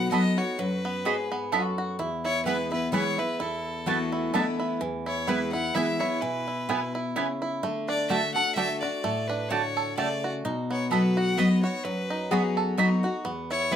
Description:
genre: bluegrass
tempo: 128 BPM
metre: 3/4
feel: swing 55% on 8ths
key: E major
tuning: A4 = 440 Hz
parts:
  - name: clear fiddle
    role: melody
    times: 0.0-13.8 s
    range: A4 to F#5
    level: -30 LUFS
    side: left 2 dB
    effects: none
  - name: picked steel-string acoustic guitar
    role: accompaniment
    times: 0.0-13.8 s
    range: E2 to F#4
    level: -28 LUFS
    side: left 2 dB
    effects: none
  - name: bluegrass banjo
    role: arpeggios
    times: 0.0-13.8 s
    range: E3 to A4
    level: -31 LUFS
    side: right 3 dB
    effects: none
  - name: mandolin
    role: stabs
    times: 0.1-13.8 s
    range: A3 to B5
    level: -28 LUFS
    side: right 6 dB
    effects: none
  - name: lap resonator guitar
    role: second line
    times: 1.1-4.8, 12.3-13.3 s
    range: E4 to G#4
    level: -32 LUFS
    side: left 6 dB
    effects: none
room: wet small room ambience, RT60 0.5 s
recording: none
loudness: -24 LUFS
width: side -9 dB against mid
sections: 0.0-4.8 A section; 4.8-13.8 A section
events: none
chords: 0.0 B; 2.0 E; 3.4 Esus4; 4.8 E; 7.6 D; 10.4 B; 13.2 E5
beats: 0.12 | 0.59 1.06 1.52 | 1.99 2.46 2.93 | 3.40 3.87 4.34 | 4.81 5.28 5.75 | 6.22 6.69 7.16 | 7.63 8.10 8.57 | 9.04 9.51 9.98 | 10.44 10.91 11.38 | 11.85 12.32 12.78 | 13.25 13.72

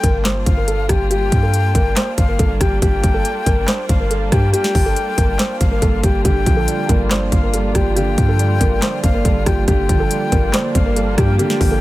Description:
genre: hip hop, trap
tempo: 140 BPM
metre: 4/4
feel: half-time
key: G minor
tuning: A4 = 440 Hz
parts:
  - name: felt-muted upright piano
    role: melody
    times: 0.0-11.8 s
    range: G4 to C5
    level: -22 LUFS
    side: equal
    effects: low-pass filter
  - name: breathy bright concert flute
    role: second line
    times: 0.0-11.8 s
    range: F5 to G5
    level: -25 LUFS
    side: left 6 dB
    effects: tape echo
  - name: muted symphonic string section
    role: sustained chords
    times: 0.0-11.8 s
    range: G3 to F4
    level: -26 LUFS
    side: right 1 dB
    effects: none
  - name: warm 808-style bass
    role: bass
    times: 0.0-11.8 s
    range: G1 to G2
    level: -19 LUFS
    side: equal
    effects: none
  - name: trap drum kit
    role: drums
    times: 0.0-11.7 s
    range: handclaps, hi-hat, kick drum, rim click, snare drum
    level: -17 LUFS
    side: equal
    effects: none
  - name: dark baby grand piano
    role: accompaniment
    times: 6.2-11.8 s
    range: D3 to D4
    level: -22 LUFS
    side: right 3 dB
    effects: low-pass filter
room: little or no reverb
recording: none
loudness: -14 LUFS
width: side -17 dB against mid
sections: 0.0-11.8 A section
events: none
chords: 0.0 Gm7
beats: 0.25 0.68 | 1.11 1.54 1.97 2.39 | 2.82 3.25 3.68 4.11 | 4.54 4.96 5.39 5.82 | 6.25 6.68 7.11 7.54 | 7.96 8.39 8.82 9.25 | 9.68 10.11 10.54 10.96 | 11.39

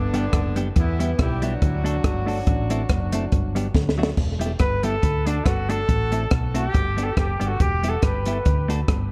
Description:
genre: ska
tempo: 140 BPM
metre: 4/4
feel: swing 55% on 8ths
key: E minor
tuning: A4 = 440 Hz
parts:
  - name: mellow horn section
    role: melody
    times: 0.0-3.8 s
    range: D3 to G4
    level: -31 LUFS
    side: equal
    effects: tape echo
  - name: hollow-body short-scale fingered electric bass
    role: bass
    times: 0.0-9.1 s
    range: E1 to E2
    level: -28 LUFS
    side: equal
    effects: none
  - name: clean electric guitar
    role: accompaniment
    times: 0.1-8.8 s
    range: F#3 to A4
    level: -32 LUFS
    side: equal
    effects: none
  - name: compact cocktail drum kit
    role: drums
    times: 0.1-9.0 s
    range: crash cymbal, hi-hat, kick drum, rim click, snare drum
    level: -25 LUFS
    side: equal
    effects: tape echo
  - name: warm trumpet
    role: melody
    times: 4.6-8.7 s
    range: D4 to B4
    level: -28 LUFS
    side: equal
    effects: tape echo
room: light reverb, small room ambience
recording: dark, warm production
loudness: -22 LUFS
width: mono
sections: 0.0-4.2 A section; 4.2-9.1 B section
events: drum fill 3.8-4.2; trumpet solo 4.2-9.1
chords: 0.0 G; 0.8 Em; 1.6 D; 2.5 Am; 3.3 G; 3.8 D; 4.2 Em; 5.0 D; 5.9 Am; 6.7 G; 7.6 Em; 8.5 D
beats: 0.34 | 0.76 1.19 1.62 2.05 | 2.47 2.90 3.33 3.75 | 4.18 4.61 5.04 5.46 | 5.89 6.32 6.75 7.18 | 7.60 8.03 8.46 8.89

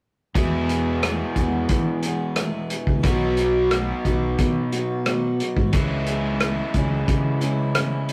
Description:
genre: folk rock and heartland rock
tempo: 89 BPM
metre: 4/4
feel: straight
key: E major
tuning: A4 = 439 Hz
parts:
  - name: overdriven electric guitar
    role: riff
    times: 0.3-8.1 s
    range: E2 to G#4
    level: -30 LUFS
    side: equal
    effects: none
  - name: picked steel-string acoustic guitar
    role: accompaniment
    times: 0.4-8.1 s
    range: E2 to G#4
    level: -29 LUFS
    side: equal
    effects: none
  - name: fingered electric bass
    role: bass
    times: 0.4-8.1 s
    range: B1 to E3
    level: -28 LUFS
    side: equal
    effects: none
  - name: vintage drum kit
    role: drums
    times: 0.4-8.1 s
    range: hi-hat, kick drum, rim click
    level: -26 LUFS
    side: equal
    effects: none
room: moderate studio ambience, RT60 0.5 s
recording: rough rehearsal-room recording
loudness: -22 LUFS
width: mono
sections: 0.4-8.1 A section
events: none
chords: 0.4 E; 3.0 B; 5.7 C#m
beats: | 0.36 1.03 1.70 2.38 | 3.05 3.72 4.39 5.07 | 5.74 6.41 7.08 7.76

